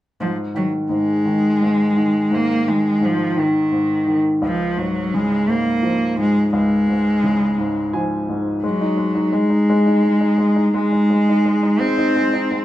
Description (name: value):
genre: pop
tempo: 57 BPM (dotted quarters)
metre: 6/8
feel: straight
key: unclear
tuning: A4 = 440 Hz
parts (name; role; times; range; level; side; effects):
- rich cello; melody; 0.2-12.6 s; Eb3 to C4; -18 LUFS; equal; none
- clear baby grand piano; accompaniment; 0.2-12.6 s; Db2 to Ab5; -20 LUFS; left 1 dB; none
room: wet studio reverb, RT60 0.5 s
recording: band playing live in one room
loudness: -16 LUFS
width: side -14 dB against mid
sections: 0.2-8.6 A section; 8.6-12.6 B section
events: grand piano fill 7.6-8.6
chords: 0.2 Ab5; 4.4 Db; 8.6 Ab5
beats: | 0.20 1.26 | 2.31 3.37 | 4.42 5.48 | 6.53 7.59 | 8.64 9.70 | 10.75 11.80